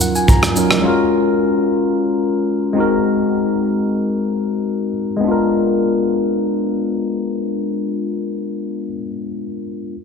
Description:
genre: amapiano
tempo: free time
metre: none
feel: none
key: unclear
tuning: A4 = 440 Hz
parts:
  - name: tine electric piano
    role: accompaniment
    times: 0.0-10.0 s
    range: Gb3 to Bb5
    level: -16 LUFS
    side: left 2 dB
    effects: lush chorus, low-pass filter
  - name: crunchy breakbeat drum kit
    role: drums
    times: 0.0-0.8 s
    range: kick drum, rim click, shaker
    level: -14 LUFS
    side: right 1 dB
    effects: none
room: light reverb, small room ambience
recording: dense, heavily limited modern master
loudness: -16 LUFS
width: side -6 dB against mid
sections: 0.0-5.2 A section; 5.2-7.4 B section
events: tine electric piano fill 0.0-0.8; filter sweep on tine electric piano 0.0-5.2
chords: 0.0 Ebm9; 0.8 Gbmaj9; 2.8 Ab7; 5.2 Bb7b9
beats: free time

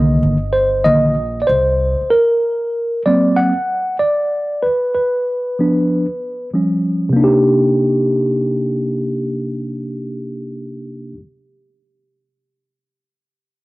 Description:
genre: hip hop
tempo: 95 BPM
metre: 4/4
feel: swing 65% on 16ths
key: C minor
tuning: A4 = 440 Hz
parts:
  - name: mellow tine electric piano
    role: accompaniment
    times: 0.0-11.2 s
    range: C3 to F#5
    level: -15 LUFS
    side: equal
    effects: medium stereo tremolo, low-pass filter, cassette tape
  - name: upright bass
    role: bass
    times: 0.0-2.0 s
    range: G1 to C2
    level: -21 LUFS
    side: equal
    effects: none
room: moderate spring reverb, RT60 2.6 s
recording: home recording on cassette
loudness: -14 LUFS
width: side -20 dB against mid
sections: 0.0-7.2 A section; 7.2-9.7 B section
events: tine electric piano solo 0.0-7.2; filter sweep on tine electric piano 0.0-7.2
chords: 0.0 Cm9; 2.1 Daug7; 4.6 Bdim; 6.5 Fsus2; 7.2 Cm9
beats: 0.22 0.85 1.49 | 2.12 2.75 3.38 4.01 | 4.64 5.27 5.91 6.54 | 7.17 7.80 8.43 9.06

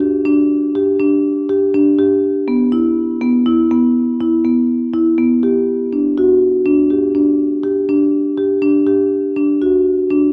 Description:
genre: contemporary instrumental, contemporary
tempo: 122 BPM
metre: 7/4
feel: straight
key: G major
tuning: A4 = 440 Hz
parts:
  - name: marimba with medium mallets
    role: solo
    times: 0.0-10.3 s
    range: B3 to G4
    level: -15 LUFS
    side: equal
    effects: none
room: light reverb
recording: dark, warm production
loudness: -15 LUFS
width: mono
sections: 0.0-9.1 A section; 9.1-10.3 A section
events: none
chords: none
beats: 0.26 0.75 1.24 1.74 | 2.23 2.72 3.21 3.70 4.20 4.69 5.18 | 5.67 6.16 6.66 7.15 7.64 8.13 8.62 | 9.11 9.60 10.09

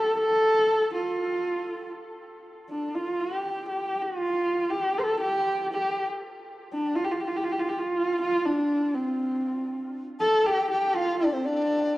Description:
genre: mongolian traditional, Mongolian folk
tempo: 120 BPM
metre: 4/4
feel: straight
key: unclear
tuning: A4 = 440 Hz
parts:
  - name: dark horsehead fiddle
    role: melody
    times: 0.0-12.0 s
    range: C4 to C5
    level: -24 LUFS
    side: equal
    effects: slapback echo
  - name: mellow hollow large dizi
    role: second line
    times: 10.2-12.0 s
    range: C5 to A5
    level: -28 LUFS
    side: left 1 dB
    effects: none
room: moderate huge ambient reverb, RT60 8.1 s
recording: worn, warbling old tape, cassette tape, warbly pitch drift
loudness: -24 LUFS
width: side -17 dB against mid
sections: 0.0-10.2 A section; 10.2-12.0 B section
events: none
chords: none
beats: | 0.20 0.70 1.20 1.70 | 2.20 2.70 3.20 3.70 | 4.20 4.70 5.20 5.70 | 6.20 6.70 7.20 7.70 | 8.20 8.70 9.20 9.70 | 10.20 10.70 11.20 11.70

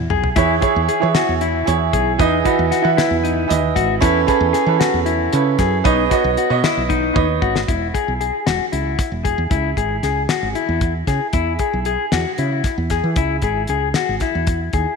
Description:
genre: progressive instrumental, band music in an uneven meter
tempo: 230 BPM (eighths)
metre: 7/8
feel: straight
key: E major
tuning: A4 = 440 Hz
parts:
  - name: woody fretless electric bass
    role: bass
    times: 0.0-14.8 s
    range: E1 to E3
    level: -21 LUFS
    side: right 1 dB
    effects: none
  - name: mellow electric guitar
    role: arpeggios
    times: 0.1-14.9 s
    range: D#4 to G#4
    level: -20 LUFS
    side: left 8 dB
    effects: warbly pitch drift, tape echo
  - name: damped 70s drum kit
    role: drums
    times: 0.1-14.9 s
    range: hi-hat, kick drum, snare drum, toms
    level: -22 LUFS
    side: left 1 dB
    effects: none
  - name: bright baby grand piano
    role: accompaniment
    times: 0.4-7.7 s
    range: E3 to F#5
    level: -18 LUFS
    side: right 13 dB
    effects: none
room: moderate echo chamber reverb, RT60 2.3 s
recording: 1960s-style stereo with parts hard left and right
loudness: -15 LUFS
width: side -4 dB against mid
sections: 0.0-7.7 A section; 7.7-15.0 B section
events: drum fill 0.0-0.4, 7.2-7.7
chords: 0.4 C#m/E; 2.2 B/E; 4.0 Aadd9/E; 5.9 Badd9; 7.7 E; 9.5 C#m; 11.3 E; 13.2 C#m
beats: 0.11 | 0.37 0.63 0.89 1.15 1.41 1.67 1.93 | 2.19 2.46 2.72 2.98 3.24 3.50 3.76 | 4.02 4.28 4.54 4.81 5.07 5.33 5.59 | 5.85 6.11 6.37 6.63 6.89 7.16 7.42 | 7.68 7.94 8.20 8.46 8.72 8.99 9.25 | 9.51 9.77 10.03 10.29 10.55 10.82 11.08 | 11.34 11.60 11.86 12.12 12.39 12.65 12.91 | 13.17 13.43 13.69 13.96 14.22 14.48 14.74

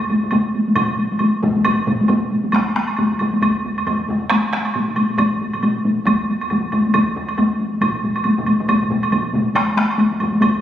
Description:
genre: japanese traditional, taiko drum ensemble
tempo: 136 BPM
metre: 4/4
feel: swing 60% on 16ths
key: none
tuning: none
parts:
  - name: taiko ensemble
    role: percussion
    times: 0.1-10.6 s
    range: none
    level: -17 LUFS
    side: left 1 dB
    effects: none
  - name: taiko ensemble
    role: percussion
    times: 0.1-10.5 s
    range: none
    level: -28 LUFS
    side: left 2 dB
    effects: none
  - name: woodblock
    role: percussion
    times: 0.3-10.5 s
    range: none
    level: -23 LUFS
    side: right 3 dB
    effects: none
  - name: taiko ensemble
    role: percussion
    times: 0.8-9.5 s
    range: none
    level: -28 LUFS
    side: right 2 dB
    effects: none
  - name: taiko ensemble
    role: percussion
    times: 0.8-10.5 s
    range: none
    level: -33 LUFS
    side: equal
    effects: none
room: wet scoring stage reverb, RT60 1.6 s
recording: recorded on a phone in the room, studio reverb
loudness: -16 LUFS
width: side -11 dB against mid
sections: 0.0-2.5 A section; 2.5-10.6 B section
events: speeding up 0.0-10.6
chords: none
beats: 0.32 | 0.76 1.21 1.65 2.10 | 2.54 2.98 3.43 3.87 | 4.31 4.75 5.19 5.63 | 6.07 6.51 6.94 7.38 | 7.82 8.25 8.69 9.12 | 9.55 9.99 10.42

